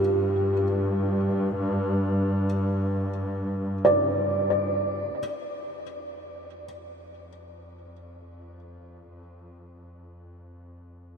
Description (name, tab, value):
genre	ambient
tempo	free time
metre	none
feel	none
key	unclear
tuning	A4 = 440 Hz
part	felt-muted upright piano	arpeggios	0.0-6.6 s	F4 to D5	-26 LUFS	right 1 dB	ping-pong delay, shimmer reverb
part	rich studio double bass section	bass	0.0-11.2 s	F2 to G2	-28 LUFS	equal	none
room	wet huge ambient reverb, RT60 8.4 s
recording	none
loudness	-23 LUFS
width	side -6 dB against mid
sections	0.0-5.2 A section; 5.2-11.2 B section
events	fade-in on double bass section 5.2-11.2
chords	0.0 G5; 5.2 N.C.